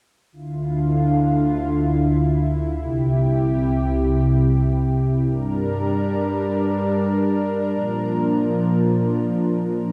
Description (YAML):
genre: synthwave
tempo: free time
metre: none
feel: none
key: D minor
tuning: A4 = 441 Hz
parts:
  - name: lush unison pad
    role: sustained chords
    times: 0.3-9.9 s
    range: C2 to Bb4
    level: -21 LUFS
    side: equal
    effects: chorus
room: wet plate reverb, RT60 2.4 s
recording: bright 1980s-style digital production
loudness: -21 LUFS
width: mono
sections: 0.3-9.9 A section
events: none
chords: 0.3 Dmadd9; 2.8 C; 5.3 Gm; 7.8 Bb